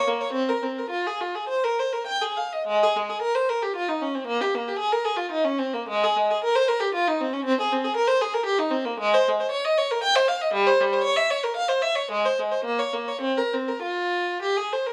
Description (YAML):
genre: classical, baroque-style suite movement for unaccompanied violin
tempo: 96-120 BPM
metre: 3/4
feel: rubato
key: Ab major, F minor from 9.0 s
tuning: A4 = 443 Hz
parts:
  - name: rich violin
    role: solo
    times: 0.0-14.9 s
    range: G3 to G5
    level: -24 LUFS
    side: equal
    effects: none
room: moderate stone room reverb, RT60 1.1 s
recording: dark, warm production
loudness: -24 LUFS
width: mono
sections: 0.0-2.7 A section; 2.7-14.9 A section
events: none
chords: none